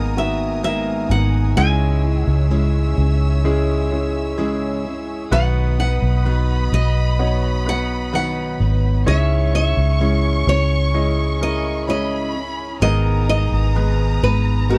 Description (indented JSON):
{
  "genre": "pop ballad",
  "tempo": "64 BPM",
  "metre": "4/4",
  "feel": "straight",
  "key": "unclear",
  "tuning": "A4 = 440 Hz",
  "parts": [
    { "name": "nylon-string guitar", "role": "melody", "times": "0.0-14.8 s", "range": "G#4 to G#5", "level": "-26 LUFS", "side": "equal", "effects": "none" },
    { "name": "warm upright piano", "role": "accompaniment", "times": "0.0-14.8 s", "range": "G#2 to D#5", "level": "-27 LUFS", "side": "equal", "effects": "none" },
    { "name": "warm studio string section", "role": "sustained chords", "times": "0.0-14.8 s", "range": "B3 to E6", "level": "-36 LUFS", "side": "equal", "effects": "none" },
    { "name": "picked steel-string acoustic guitar", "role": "arpeggios", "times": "0.0-14.8 s", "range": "G#2 to B4", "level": "-30 LUFS", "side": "equal", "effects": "tape echo" },
    { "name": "vintage muted fingered electric bass", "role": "bass", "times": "0.0-14.8 s", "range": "G#1 to C#2", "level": "-20 LUFS", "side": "equal", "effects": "none" },
    { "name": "warm studio violin section", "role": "second line", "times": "5.3-14.8 s", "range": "A#5 to C#6", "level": "-32 LUFS", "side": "equal", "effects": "none" }
  ],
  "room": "little or no reverb",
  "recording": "dry, close 1970s-style studio recording",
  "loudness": "-19 LUFS",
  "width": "mono",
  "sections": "0.0-14.8 A section",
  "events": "none",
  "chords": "0.0 G#madd9; 1.6 C#m; 5.3 B; 9.1 C#m; 12.8 G#madd9"
}